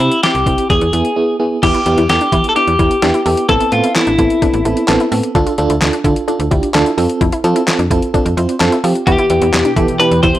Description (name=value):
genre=synth-pop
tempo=129 BPM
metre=4/4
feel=straight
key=unclear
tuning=A4 = 440 Hz
part: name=twelve-string electric guitar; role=melody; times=0.0-5.1, 9.1-10.4 s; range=E4 to C5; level=-15 LUFS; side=left 2 dB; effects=analog delay
part: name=FM electric piano with tremolo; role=accompaniment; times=0.0-10.4 s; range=B3 to C5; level=-16 LUFS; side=right 3 dB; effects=none
part: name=slap-like FM bass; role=bass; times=0.0-10.3 s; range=A1 to F3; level=-18 LUFS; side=left 1 dB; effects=none
part: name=detuned 8-bit digital drum machine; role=drums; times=0.0-10.4 s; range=crash cymbal, handclaps, hi-hat, kick drum, snare drum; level=-18 LUFS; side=left 1 dB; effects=none
part: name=wide unison pluck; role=arpeggios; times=1.6-10.4 s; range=D4 to A4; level=-22 LUFS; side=left 2 dB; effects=auto-pan, analog delay
part: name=warm analog pad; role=sustained chords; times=9.1-10.4 s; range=B2 to G4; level=-19 LUFS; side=equal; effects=chorus
room=digital ambience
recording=dry, gritty hardware recording, transformer saturation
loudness=-11 LUFS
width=side -14 dB against mid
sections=0.0-1.6 A section; 1.6-10.4 B section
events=break 1.2-1.6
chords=0.0 C; 0.7 E; 1.6 Em; 3.5 Amadd9; 5.3 Dm; 7.0 F; 9.1 Em